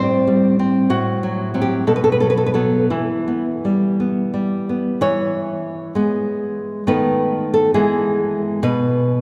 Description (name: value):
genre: romantic piece for solo classical guitar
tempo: 55-69 BPM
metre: 2/4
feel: rubato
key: E minor, E major from 5.0 s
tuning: A4 = 440 Hz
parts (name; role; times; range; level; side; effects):
- nylon-string guitar; solo; 0.0-9.2 s; A2 to C#5; -19 LUFS; equal; none
room: wet church reverb, RT60 3.7 s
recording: recorded in a church or concert hall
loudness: -19 LUFS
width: mono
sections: 0.0-5.0 A section; 5.0-9.2 B section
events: none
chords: 0.0 Am7; 0.9 F#dim/A; 1.9 B5; 2.9 Em; 5.0 E; 6.9 B7/D#; 7.8 E; 8.6 N.C.